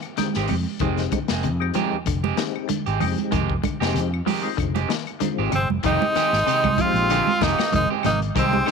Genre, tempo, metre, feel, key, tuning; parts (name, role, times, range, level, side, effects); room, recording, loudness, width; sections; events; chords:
afrobeat; 95 BPM; 4/4; swing 55% on 16ths; F dorian; A4 = 441 Hz
clean electric guitar; arpeggios; 0.0-8.7 s; C3 to F3; -30 LUFS; left 14 dB; vibrato effect
crunchy breakbeat drum kit; drums; 0.0-8.7 s; hi-hat, kick drum, snare drum; -29 LUFS; left 6 dB
claves; percussion; 0.0-8.7 s; -37 LUFS; left 16 dB
percussive tonewheel organ; accompaniment; 0.2-8.7 s; Eb3 to Bb4; -30 LUFS; left 15 dB; chorus vibrato, slow rotary speaker
congas; percussion; 0.2-8.7 s; -28 LUFS; right 15 dB
electric guitar at the edge of break-up; stabs; 0.4-8.7 s; Eb3 to G4; -28 LUFS; right 14 dB
fingered electric bass; bass; 0.4-8.6 s; F1 to F2; -25 LUFS; equal
trombone with metal mute; second line; 5.5-8.7 s; Ab3 to C4; -29 LUFS; right 12 dB
edgy tenor saxophone; melody; 5.6-8.7 s; C4 to F4; -21 LUFS; equal; tape echo
light reverb; 1960s-style stereo with parts hard left and right; -20 LUFS; side -5 dB against mid
0.0-5.8 A section; 5.8-8.7 B section
0.0 Fm9